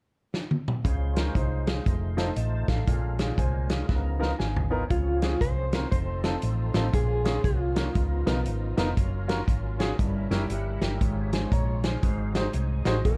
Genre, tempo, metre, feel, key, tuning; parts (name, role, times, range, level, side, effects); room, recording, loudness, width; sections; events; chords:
uptempo gospel; 118 BPM; 4/4; swing 62% on 8ths; Db major; A4 = 441 Hz
natural country drum kit; drums; 0.3-13.2 s; hi-hat, kick drum, snare drum, toms; -30 LUFS; equal
warm baby grand piano; accompaniment; 0.8-13.2 s; G2 to Bb5; -35 LUFS; equal
percussive tonewheel organ; sustained chords; 0.8-13.2 s; F3 to A5; -41 LUFS; equal; slow rotary speaker, overdrive, chorus vibrato
hollow-body short-scale fingered electric bass; bass; 0.8-13.2 s; F1 to Db2; -31 LUFS; equal
mellow electric guitar; melody; 4.9-8.7, 13.1-13.2 s; F4 to C5; -34 LUFS; equal; tremolo
muted studio string section; sustained chords; 4.9-13.2 s; F3 to C5; -47 LUFS; equal
light reverb; dark, warm production; -27 LUFS; mono
0.8-4.9 A section; 4.9-13.2 B section
drum fill 0.3-0.8, 3.9-4.9; grand piano fill 3.9-4.9
0.0 N.C.; 0.8 Dbmaj7; 1.9 F7; 2.9 Bbm7; 3.9 Db13; 4.9 Dbmaj7; 5.9 F7; 6.9 Bbm7; 8.0 Db13; 9.0 Gbmaj7; 10.0 Gdim7; 11.0 Db/Ab; 12.0 Ab7